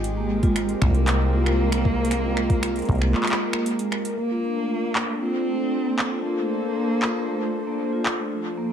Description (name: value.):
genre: IDM.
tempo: 116 BPM.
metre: 4/4.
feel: straight.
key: unclear.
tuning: A4 = 439 Hz.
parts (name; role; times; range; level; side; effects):
dark cello; melody; 0.0-8.0 s; Ab3 to C4; -28 LUFS; right 1 dB; diffuse ambient delay.
warm analog pad; sustained chords; 0.0-8.7 s; F3 to C5; -29 LUFS; equal; chorus.
deep acid bass; bass; 0.0-3.1 s; Ab1 to C2; -23 LUFS; equal; none.
booming analog drum machine; drums; 0.0-8.2 s; finger snaps, handclaps, hi-hat; -28 LUFS; equal; diffuse ambient delay.
vibraphone with soft mallets; arpeggios; 0.2-8.7 s; Ab3 to Bb4; -27 LUFS; equal; low-pass filter, diffuse ambient delay.
electronic kick drum; drums; 0.4-3.0 s; none; -21 LUFS; equal; overdrive.
room: moderate plate reverb, RT60 1.0 s.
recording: dreamy mix soaked in reverb.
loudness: -21 LUFS.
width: side -8 dB against mid.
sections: 0.0-4.2 A section; 4.2-8.7 B section.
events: filter sweep on vibraphone 4.2-8.7.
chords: 0.0 Abmaj9; 4.2 Bbmaj9.